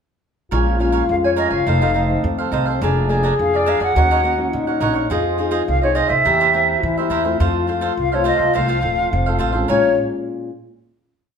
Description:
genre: samba.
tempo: 105 BPM.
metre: 4/4.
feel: straight.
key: Bb minor.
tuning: A4 = 440 Hz.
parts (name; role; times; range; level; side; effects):
breathy trombone; second line; 0.5-10.0 s; C4 to Ab4; -22 LUFS; left 4 dB; none.
cavaquinho; accompaniment; 0.5-9.9 s; D4 to Ab5; -23 LUFS; right 6 dB; none.
nylon-string guitar; accompaniment; 0.5-10.5 s; F2 to Ab4; -26 LUFS; left 2 dB; none.
upright bass; bass; 0.5-10.0 s; Eb1 to E3; -22 LUFS; equal; none.
wooden flute; melody; 1.1-10.0 s; Db5 to Gb5; -18 LUFS; equal; none.
room: wet large studio reverb, RT60 0.9 s.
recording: band playing live in one room.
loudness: -15 LUFS.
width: side -7 dB against mid.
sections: 0.5-9.7 A section; 9.7-11.4 final chord.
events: none.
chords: 0.5 Bbm7; 1.7 F7; 2.8 Bb7/F; 4.0 Ebm7; 5.1 Fm7; 6.3 C7/E; 7.4 F; 9.7 Bbm7.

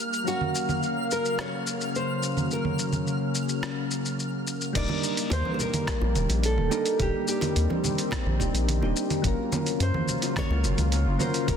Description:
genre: sunset chillout.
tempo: 107 BPM.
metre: 4/4.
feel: straight.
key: unclear.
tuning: A4 = 440 Hz.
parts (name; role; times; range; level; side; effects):
soft electric-piano-like synth keys; accompaniment; 0.0-11.6 s; Gb3 to F5; -32 LUFS; moving between left 6 dB and right 3 dB; chorus, auto-pan, tape echo.
lush unison pad; sustained chords; 0.0-11.6 s; Db3 to F5; -31 LUFS; left 1 dB; chorus.
twinkling granular texture; texture; 0.0-4.8 s; F6; -36 LUFS; right 2 dB; built-in reverb.
dusty soul sampler-style drum kit; drums; 0.1-11.6 s; congas, crash cymbal, hi-hat, rim click, shaker; -31 LUFS; right 2 dB; soft clipping on snare.
nylon-string guitar; melody; 0.3-11.6 s; Gb4 to D5; -32 LUFS; equal; tape echo.
round analog bass; bass; 4.8-11.6 s; Eb1 to Gb2; -25 LUFS; equal; none.
electronic kick drum; drums; 4.8-11.6 s; none; -31 LUFS; equal; none.
bongos and congas; percussion; 4.9-11.6 s; none; -36 LUFS; right 2 dB; none.
room: moderate concert hall reverb, RT60 2.3 s.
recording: dense, heavily limited modern master.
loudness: -24 LUFS.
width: side -7 dB against mid.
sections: 0.0-4.8 A section; 4.8-11.6 B section.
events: none.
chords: 0.3 Gbmaj7; 4.8 Ebmaj7; 9.2 Gbmaj7.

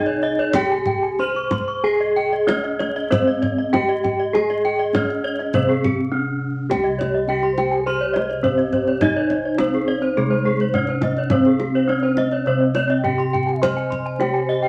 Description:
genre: Balinese gamelan.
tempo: 93-104 BPM.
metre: 4/4.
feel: straight.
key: C pelog.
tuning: A4 = 440 Hz.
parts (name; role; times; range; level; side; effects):
gamelan-type bronze metallophone; melody; 0.0-14.7 s; Ab3 to C5; -25 LUFS; equal; none.
gamelan-type bronze metallophone; arpeggios; 0.0-14.6 s; G4 to C6; -26 LUFS; equal; none.
gamelan-type bossed gongs; bass; 0.0-14.7 s; C2 to C5; -26 LUFS; equal; none.
gamelan-type bronze metallophone; arpeggios; 0.1-14.7 s; G4 to Db6+35c; -29 LUFS; equal; none.
kendang; percussion; 0.1-14.7 s; none; -28 LUFS; equal; none.
breathy mellow bass bansuri; second line; 7.5-14.7 s; G4 to G5; -31 LUFS; equal; none.
room: wet studio reverb, RT60 0.7 s.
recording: vinyl crackle.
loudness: -20 LUFS.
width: mono.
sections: 0.0-6.7 A section; 6.7-14.7 B section.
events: break 5.8-6.7.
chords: none.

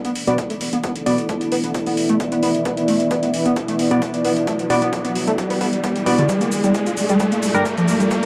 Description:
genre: driving peak-time techno.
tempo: 132 BPM.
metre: 4/4.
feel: straight.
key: unclear.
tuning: A4 = 440 Hz.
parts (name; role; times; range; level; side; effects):
overdriven synth lead; riff; 0.0-8.3 s; D3 to B3; -24 LUFS; equal; distortion, tube saturation, lush chorus, sidechain pumping, tape echo.
electronic hi-hat and shaker; drums; 0.0-8.3 s; none; -32 LUFS; equal; none.
riser; sound effects; 1.4-8.3 s; none; -27 LUFS; equal; none.
deep dark ambient pad; texture; 0.0-8.3 s; G3 to D5; -24 LUFS; equal; chorus, built-in reverb, sidechain pumping.
sync-sweep polysynth; stabs; 0.3-1.2, 3.9-7.6 s; G3 to D5; -25 LUFS; equal; chorus, sidechain pumping, tape echo.
electronic kick drum; drums; 0.4-8.2 s; none; -32 LUFS; equal; high-pass filter on kick, high-pass filter on room.
room: moderate plate reverb, RT60 2.0 s.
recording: none.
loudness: -19 LUFS.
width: mono.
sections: 0.0-8.3 A section.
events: build-up 0.0-8.3; filter sweep on analog polysynth 0.0-8.3; riser 1.4-8.3; drum fill 6.3-8.3.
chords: 0.0 Bm; 6.3 Gm.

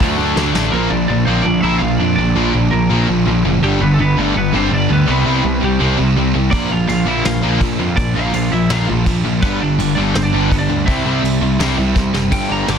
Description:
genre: punk rock.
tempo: 166 BPM.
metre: 4/4.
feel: straight.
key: unclear.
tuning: A4 = 439 Hz.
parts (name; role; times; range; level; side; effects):
lightly driven lead guitar; melody; 0.0-12.8 s; F#3 to D6; -22 LUFS; right 2 dB; digital delay.
distorted electric guitar; riff; 0.0-12.8 s; G2 to D4; -20 LUFS; left 10 dB; overdrive.
fuzz guitar; riff; 0.0-12.8 s; G2 to E4; -23 LUFS; left 1 dB; distortion.
sludgy distorted guitar; riff; 0.0-12.8 s; G2 to D4; -19 LUFS; right 11 dB; overdrive.
fuzz picked electric bass; bass; 0.0-12.8 s; F#1 to F2; -20 LUFS; equal; overdrive.
vintage brush drum kit; drums; 0.0-0.6, 6.5-12.8 s; crash cymbal, hi-hat, kick drum, snare drum; -21 LUFS; equal; soft clipping on snare.
room: little or no reverb.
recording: dense, heavily limited modern master.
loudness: -13 LUFS.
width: side -7 dB against mid.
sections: 0.7-12.3 A section.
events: drum fill 0.4-0.7, 12.0-12.3; half time 0.7-12.3.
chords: 0.0 D; 0.7 Bb; 3.6 G; 5.1 C; 6.5 Bb; 9.4 G; 10.9 C.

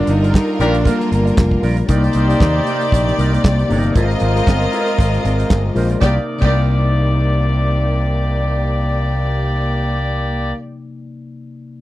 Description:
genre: disco.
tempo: 116 BPM.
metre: 4/4.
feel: swing 56% on 16ths.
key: C minor.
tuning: A4 = 440 Hz.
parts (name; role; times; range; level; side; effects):
warm concert grand piano; melody; 0.0-1.6 s; Bb3 to Eb4; -19 LUFS; right 1 dB; none.
dark studio string section; second line; 0.0-10.5 s; G3 to Eb5; -24 LUFS; right 1 dB; none.
mellow tine electric piano; accompaniment; 0.0-11.8 s; C3 to D5; -23 LUFS; left 4 dB; none.
muted French horn section; sustained chords; 0.0-10.1 s; C3 to D5; -27 LUFS; left 1 dB; none.
electric guitar with an envelope filter; accompaniment; 0.1-10.6 s; Eb4 to Eb5; -30 LUFS; right 6 dB; spring reverb.
picked electric bass; bass; 0.1-10.5 s; F1 to Eb2; -17 LUFS; equal; none.
damped 70s drum kit; drums; 0.1-6.6 s; crash cymbal, handclaps, hi-hat, kick drum, snare drum; -15 LUFS; equal; none.
bright horn section; stabs; 0.6-10.5 s; Bb3 to Eb5; -24 LUFS; left 1 dB; none.
room: little or no reverb.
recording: dry, close 1970s-style studio recording.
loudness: -14 LUFS.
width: side -16 dB against mid.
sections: 0.0-1.9 A section; 1.9-6.0 B section; 6.0-10.2 C section.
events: none.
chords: 0.0 Gm7; 1.9 Cm9; 4.0 Ab69; 6.0 Cm9.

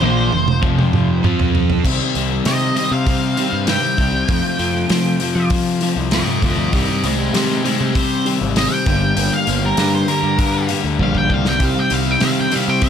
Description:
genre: quiet-loud alternative rock.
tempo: 98 BPM.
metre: 4/4.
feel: straight.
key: C dorian.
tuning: A4 = 441 Hz.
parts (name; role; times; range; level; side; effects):
octave-fuzz lead guitar; melody; 0.0-12.9 s; Eb4 to G5; -21 LUFS; equal; distortion, tape echo.
semi-hollow electric guitar; arpeggios; 0.0-12.8 s; F2 to C5; -24 LUFS; right 6 dB; lush chorus.
fuzz guitar; riff; 0.0-1.8, 11.6-12.9 s; F2 to F4; -22 LUFS; right 10 dB; distortion.
overdriven electric guitar; riff; 0.0-12.9 s; F2 to F4; -21 LUFS; left 11 dB; none.
fuzz picked electric bass; bass; 0.0-12.9 s; F1 to F3; -21 LUFS; right 1 dB; overdrive.
loose indie drum kit; drums; 0.0-12.9 s; crash cymbal, hi-hat, kick drum, snare drum, toms; -21 LUFS; equal; none.
room: light reverb, studio ambience.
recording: none.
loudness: -15 LUFS.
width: side -8 dB against mid.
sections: 0.0-1.8 A section; 1.8-12.9 B section.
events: drum fill 0.0-1.8, 11.0-11.6; lead electric guitar solo 1.8-12.9.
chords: 0.0 F5; 1.8 Cm; 4.3 F; 6.7 Cm; 8.9 Gm; 11.6 Cm.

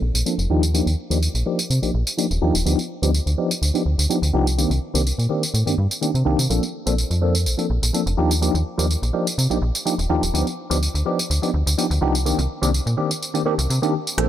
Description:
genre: filtered disco house.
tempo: 125 BPM.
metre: 4/4.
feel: straight.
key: unclear.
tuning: A4 = 440 Hz.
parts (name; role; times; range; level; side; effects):
slap-like FM bass; bass; 0.0-14.3 s; Eb1 to C3; -20 LUFS; equal; tube saturation, low-pass filter.
house drum kit; drums; 0.1-14.3 s; hi-hat, rim click, tambourine; -26 LUFS; right 1 dB; none.
bell-like tine electric piano; accompaniment; 0.3-14.3 s; Eb3 to A4; -22 LUFS; equal; fast stereo tremolo, phaser, low-pass filter.
room: light reverb.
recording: none.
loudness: -18 LUFS.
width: side -11 dB against mid.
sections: 0.0-14.2 A section.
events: filter sweep 0.0-14.2.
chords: 0.5 Ebmaj9; 2.7 G7b13/D; 4.6 Cm9; 6.5 Bbmaj9; 8.2 Ebmaj9; 10.3 G7b13/D; 12.3 Cm9.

